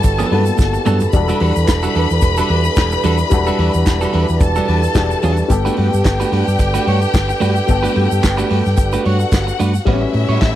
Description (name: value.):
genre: disco.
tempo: 110 BPM.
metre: 4/4.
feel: swing 56% on 16ths.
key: unclear.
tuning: A4 = 440 Hz.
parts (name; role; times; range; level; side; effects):
warm symphonic string section; second line; 0.0-10.6 s; E4 to B5; -21 LUFS; left 2 dB; none.
clean electric guitar; accompaniment; 0.0-10.5 s; F#3 to C#5; -20 LUFS; right 6 dB; none.
warm baby grand piano; accompaniment; 0.0-10.6 s; G3 to B4; -24 LUFS; left 6 dB; none.
warm French horn section; sustained chords; 0.0-10.6 s; E3 to B4; -23 LUFS; right 3 dB; none.
hollow-body short-scale fingered electric bass; bass; 0.0-10.6 s; E1 to A2; -17 LUFS; equal; none.
vintage drum kit; drums; 0.0-10.6 s; crash cymbal, handclaps, hi-hat, kick drum, snare drum, toms; -16 LUFS; equal; none.
tube shaker; percussion; 0.0-9.9 s; none; -35 LUFS; right 20 dB; none.
room: little or no reverb.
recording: dry, close 1970s-style studio recording.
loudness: -13 LUFS.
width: side -12 dB against mid.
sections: 0.0-9.9 A section.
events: drum fill 0.6-1.1.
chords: 0.0 Gmaj9; 1.1 Em11; 5.5 Gmaj9; 9.9 A13.